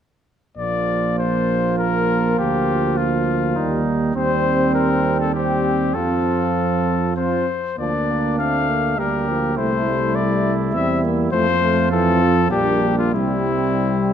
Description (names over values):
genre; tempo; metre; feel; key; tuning
classical, brass quintet; 100 BPM; 3/4; rubato; Bb major; A4 = 440 Hz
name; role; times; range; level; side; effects
warm trumpet; melody; 0.6-14.1 s; E4 to F5; -22 LUFS; left 6 dB; none
mellow trumpet; second line; 0.6-14.1 s; C4 to G4; -26 LUFS; right 8 dB; none
clear trombone; accompaniment; 0.6-14.1 s; E3 to Bb3; -26 LUFS; right 4 dB; none
mellow French horn; accompaniment; 0.6-14.1 s; G3 to C4; -24 LUFS; left 2 dB; none
mellow tuba; bass; 0.6-14.1 s; Bb1 to F2; -23 LUFS; right 4 dB; none
room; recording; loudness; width
moderate concert hall reverb, RT60 1.9 s; none; -17 LUFS; side -9 dB against mid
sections
0.6-14.1 A section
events
none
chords
0.6 Bb; 2.4 Bb/D; 3.6 Eb; 4.2 Cm/Eb; 5.9 F; 7.8 Bb/D; 9.0 Gm7/D; 9.6 C7; 11.3 F; 12.5 Gm/Bb; 13.1 C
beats
| 0.57 1.19 1.79 | 2.39 2.98 3.57 | 4.17 4.75 5.35 | 5.95 6.56 7.17 | 7.78 8.38 8.98 | 9.57 10.16 10.75 | 11.33 11.91 12.51 | 13.14 13.78